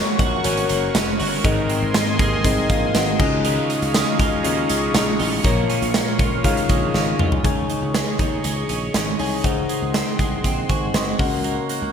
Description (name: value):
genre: 1980s-style pop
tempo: 120 BPM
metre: 4/4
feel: straight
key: Db major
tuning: A4 = 441 Hz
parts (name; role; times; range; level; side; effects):
- crunchy overdriven guitar; accompaniment; 0.0-8.0 s; Gb2 to Db4; -31 LUFS; right 6 dB; none
- mellow tine electric piano; accompaniment; 0.0-11.9 s; Ab2 to C6; -23 LUFS; left 4 dB; wide subtle chorus
- phased analog pad; sustained chords; 0.0-11.9 s; Ab4 to Db6; -28 LUFS; equal; phaser, chorus
- twelve-string electric guitar; riff; 0.0-11.9 s; Eb3 to Ab4; -28 LUFS; right 6 dB; lush chorus, ping-pong delay
- slap bass; bass; 0.2-11.9 s; F1 to Eb2; -27 LUFS; equal; none
- big rock drum kit; drums; 0.2-11.8 s; crash cymbal, hi-hat, kick drum, snare drum, tambourine, toms; -21 LUFS; right 1 dB; gated reverb
room: light reverb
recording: bright 1980s-style digital production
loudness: -18 LUFS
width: side -7 dB against mid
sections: 0.0-7.4 A section; 7.4-11.9 B section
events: tine electric piano fill 2.4-3.4; drum fill 6.9-7.4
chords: 0.0 Gb; 1.4 Abadd9; 3.2 Dbadd9; 5.4 Bbm; 6.4 Dbadd9; 7.4 Dbsus2; 9.4 Ab7; 11.2 Gb/Db